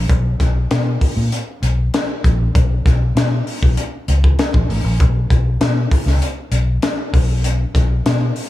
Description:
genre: polished 1980s jazz-funk pop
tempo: 98 BPM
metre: 4/4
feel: straight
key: unclear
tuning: A4 = 435 Hz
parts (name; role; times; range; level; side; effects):
- vintage muted fingered electric bass; bass; 0.0-8.3 s; A1 to B2; -16 LUFS; equal; none
- crisp fusion drum kit; drums; 0.1-8.5 s; hi-hat, kick drum, snare drum; -17 LUFS; left 1 dB; none
room: light reverb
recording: small room ambience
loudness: -14 LUFS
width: side -15 dB against mid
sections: 0.0-8.5 A section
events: none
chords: none

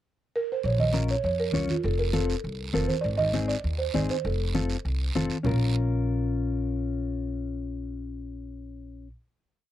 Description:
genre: latin, cumbia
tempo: 199 BPM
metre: 4/4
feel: straight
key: Bb harmonic minor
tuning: A4 = 440 Hz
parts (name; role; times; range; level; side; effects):
- buzzing marimba with soft mallets; melody; 0.4-9.1 s; F4 to Eb5; -29 LUFS; right 3 dB; tape echo
- upright bass; bass; 0.6-9.1 s; F1 to F2; -29 LUFS; equal; none
- congas; percussion; 0.6-5.5 s; none; -31 LUFS; right 2 dB; none
- guiro; percussion; 0.6-5.5 s; none; -39 LUFS; right 7 dB; none
- mellow electric guitar; accompaniment; 0.9-9.1 s; C4 to Db5; -31 LUFS; left 6 dB; none
room: little or no reverb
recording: dry, close 1970s-style studio recording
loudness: -25 LUFS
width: side -12 dB against mid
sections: 0.0-0.6 pickup bar; 0.6-5.5 A section; 5.5-7.9 final chord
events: none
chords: 0.0 N.C.; 0.6 Bbm; 1.8 F; 3.0 Ab; 4.2 F; 5.5 Bbm

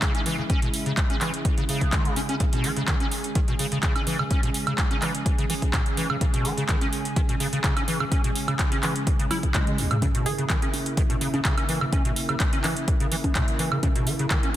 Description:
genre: acid house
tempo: 126 BPM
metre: 4/4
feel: straight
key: C# dorian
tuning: A4 = 439 Hz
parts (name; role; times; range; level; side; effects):
- lush unison pad; sustained chords; 0.0-14.6 s; C#3 to G#4; -32 LUFS; right 1 dB; chorus, sidechain pumping
- acid bass, square; riff; 0.0-14.5 s; C#2 to E4; -28 LUFS; equal; overdrive, ensemble chorus, digital delay
- booming analog drum machine; drums; 0.0-14.5 s; congas, handclaps, hi-hat, toms, woodblock; -28 LUFS; right 1 dB; none
- electronic kick drum; drums; 0.0-14.4 s; none; -24 LUFS; equal; none
- glassy wavetable pluck; melody; 10.3-10.6 s; G#4; -33 LUFS; right 5 dB; chorus, digital delay
room: light reverb, digital ambience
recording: dense, heavily limited modern master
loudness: -22 LUFS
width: side -13 dB against mid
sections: 0.0-14.6 A section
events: drum fill 9.3-10.0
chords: 0.0 C#m

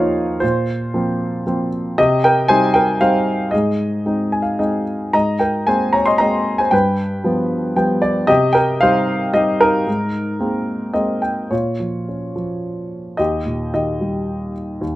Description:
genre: classical, lyrical solo piano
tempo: 114 BPM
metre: 3/4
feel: rubato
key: Bb dorian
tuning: A4 = 440 Hz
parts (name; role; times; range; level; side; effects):
- dark grand piano; solo; 0.0-15.0 s; Eb2 to C6; -16 LUFS; equal; none
room: light reverb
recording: close, detailed microphones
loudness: -16 LUFS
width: side -16 dB against mid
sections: 0.0-11.5 A section; 11.5-15.0 B section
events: grand piano fill 4.1-5.1, 7.5-8.3, 10.7-11.5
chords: 0.4 Bbsus2; 2.0 Cm; 3.5 Ab; 5.1 Abadd9; 6.7 G7; 8.3 Cm; 9.9 Abadd9; 11.5 Bbm; 13.2 Eb

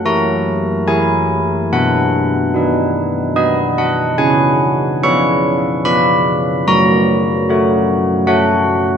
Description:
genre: classical, tune for church bells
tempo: 73 BPM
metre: 3/4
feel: straight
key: F# major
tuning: A4 = 442 Hz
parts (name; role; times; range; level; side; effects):
- carillon bells; solo; 0.0-9.0 s; F#3 to C#6; -12 LUFS; equal; none
room: moderate scoring stage reverb, RT60 1.7 s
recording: dark, warm production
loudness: -12 LUFS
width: side -7 dB against mid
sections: 0.0-9.0 A section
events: none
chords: 0.0 F#7 (rootless); 1.7 B; 4.2 C#7; 6.7 F#

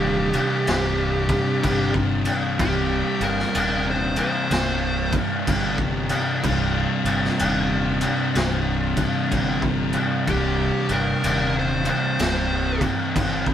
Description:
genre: stoner and doom metal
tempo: 62 BPM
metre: 4/4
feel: swing 64% on 8ths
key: unclear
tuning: A4 = 440 Hz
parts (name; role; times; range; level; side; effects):
- fuzz lead guitar; melody; 0.0-12.8 s; G4 to C5; -26 LUFS; right 1 dB; distortion
- fuzz guitar; riff; 0.0-13.5 s; C2 to C3; -31 LUFS; right 1 dB; distortion
- thick fuzz guitar; riff; 0.0-13.5 s; C2 to C3; -27 LUFS; left 8 dB; distortion
- thick fuzz guitar; riff; 0.0-13.5 s; C2 to C3; -28 LUFS; right 6 dB; distortion
- fuzz picked electric bass; bass; 0.0-13.5 s; C1 to G1; -28 LUFS; equal; overdrive
- raw garage drum kit; drums; 0.3-13.5 s; crash cymbal, kick drum, snare drum; -24 LUFS; left 1 dB; none
room: light reverb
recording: band playing live in one room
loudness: -20 LUFS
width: side -10 dB against mid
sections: 0.0-13.5 A section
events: lead electric guitar solo 0.0-13.5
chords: 0.0 Cm

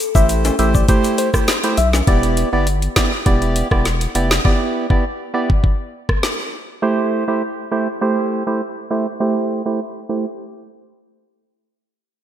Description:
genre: dancehall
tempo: 101 BPM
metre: 4/4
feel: straight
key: A minor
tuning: A4 = 440 Hz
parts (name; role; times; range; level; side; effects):
- island pop drum kit; drums; 0.0-6.4 s; hi-hat, kick drum, rim click, snare drum; -17 LUFS; equal; gated reverb
- egg shaker and timbales; percussion; 0.0-2.1 s; none; -27 LUFS; left 4 dB; none
- soft struck synth lead; melody; 0.2-1.9 s; C5 to E5; -23 LUFS; left 4 dB; chorus, ping-pong delay
- percussive organ stab; accompaniment; 0.2-10.3 s; A3 to D5; -19 LUFS; right 2 dB; chorus, low-pass filter
- round analog bass; bass; 0.2-4.4 s; E1 to B1; -19 LUFS; equal; none
room: light reverb, digital ambience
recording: bright 1980s-style digital production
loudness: -15 LUFS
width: side -10 dB against mid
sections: 0.0-2.1 A section; 2.1-11.6 B section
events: filter sweep on synth stab 2.1-11.6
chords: 0.0 Am7; 2.1 Em7; 6.8 Am7

